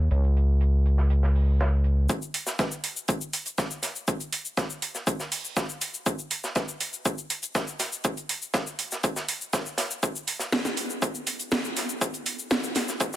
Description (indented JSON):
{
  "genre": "melodic techno",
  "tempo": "121 BPM",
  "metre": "4/4",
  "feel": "straight",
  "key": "unclear",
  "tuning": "A4 = 440 Hz",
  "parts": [
    { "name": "gritty driven synth bass", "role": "bass", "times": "0.0-2.1 s", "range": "Db2", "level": "-20 LUFS", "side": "equal", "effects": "sidechain pumping" },
    { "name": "deep reggae drum kit", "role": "drums", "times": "0.1-13.2 s", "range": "hi-hat, snare drum", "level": "-34 LUFS", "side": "right 2 dB", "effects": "sidechain pumping on hats, high-pass filter on hats, low-pass filter on hats, high-pass filter on snare, low-pass filter on snare, high-pass filter on room, low-pass filter on room" },
    { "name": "electronic kick drum", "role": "drums", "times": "2.1-13.1 s", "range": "none", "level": "-28 LUFS", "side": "equal", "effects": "high-pass filter on kick, high-pass filter on room" },
    { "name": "techno drum kit", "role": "drums", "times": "2.1-13.2 s", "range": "hi-hat, shaker, snare drum", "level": "-29 LUFS", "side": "equal", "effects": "none" }
  ],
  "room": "light reverb, small room ambience",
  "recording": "none",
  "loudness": "-25 LUFS",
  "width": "side -14 dB against mid",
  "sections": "0.0-2.1 A section; 2.1-13.2 B section",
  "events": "build-up 2.1-13.2",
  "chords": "none"
}